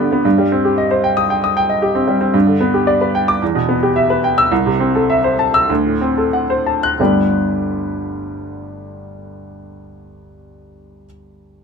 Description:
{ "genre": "classical, virtuoso piano study", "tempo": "88-116 BPM", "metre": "4/4", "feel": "rubato", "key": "G major", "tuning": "A4 = 441 Hz", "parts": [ { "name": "clear baby grand piano", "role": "solo", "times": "0.0-11.6 s", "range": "G1 to F#6", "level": "-14 LUFS", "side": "equal", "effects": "none" } ], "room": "moderate studio reverb, RT60 0.7 s", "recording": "none", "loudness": "-13 LUFS", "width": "side -6 dB against mid", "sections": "0.0-7.0 A section; 7.0-11.6 B section", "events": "slowing down 1.3-7.0", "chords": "0.2 Cm/G; 2.3 G; 3.4 Em; 4.5 Am/C; 5.7 D7; 7.0 G" }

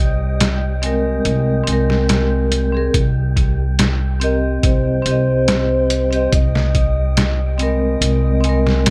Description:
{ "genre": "trip hop", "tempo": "71 BPM", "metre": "4/4", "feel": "straight", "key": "unclear", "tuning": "A4 = 438 Hz", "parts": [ { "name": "pure breathy sine lead", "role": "melody", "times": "0.0-8.9 s", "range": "Bb4 to Eb5", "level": "-26 LUFS", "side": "equal", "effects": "lush chorus, cassette tape, dub echo" }, { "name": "upright bass", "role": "bass", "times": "0.0-8.9 s", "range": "C2", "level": "-20 LUFS", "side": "equal", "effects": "none" }, { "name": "wind-like tuned noise texture", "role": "texture", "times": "0.0-8.9 s", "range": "G3 to G5", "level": "-34 LUFS", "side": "equal", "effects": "built-in reverb" }, { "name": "trip hop sampler-style drum kit", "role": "drums", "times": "0.4-8.9 s", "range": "hi-hat, kick drum, snare drum", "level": "-20 LUFS", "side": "equal", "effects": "studio reverb" }, { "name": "vibraphone with medium hard mallets", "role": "accompaniment", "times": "0.8-8.9 s", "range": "Ab3 to Eb5", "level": "-23 LUFS", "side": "equal", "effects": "harmonic tremolo, low-pass filter" } ], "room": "light reverb", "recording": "none", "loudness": "-17 LUFS", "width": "mono", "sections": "0.0-8.9 A section", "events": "none", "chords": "0.0 Absus2/C; 2.9 Cm; 6.3 Absus2/C" }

